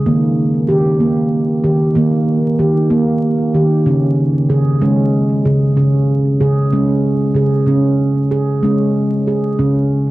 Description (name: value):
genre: world meditative, meditative tuned percussion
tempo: 63 BPM (dotted quarters)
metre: 6/8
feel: straight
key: unclear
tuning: A4 = 440 Hz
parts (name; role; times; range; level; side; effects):
- handpan; solo; 0.0-10.1 s; Db3 to Ab4; -12 LUFS; right 1 dB; cassette tape
room: moderate spring reverb, RT60 2.6 s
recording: home recording on cassette, vinyl crackle, lossy compression artefacts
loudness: -12 LUFS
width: side -17 dB against mid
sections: 0.0-7.7 A section; 7.7-10.1 B section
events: none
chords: 0.1 Eb; 3.9 Db5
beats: | 0.07 1.01 | 1.96 2.91 | 3.86 4.81 | 5.77 6.72 | 7.67 8.63 | 9.59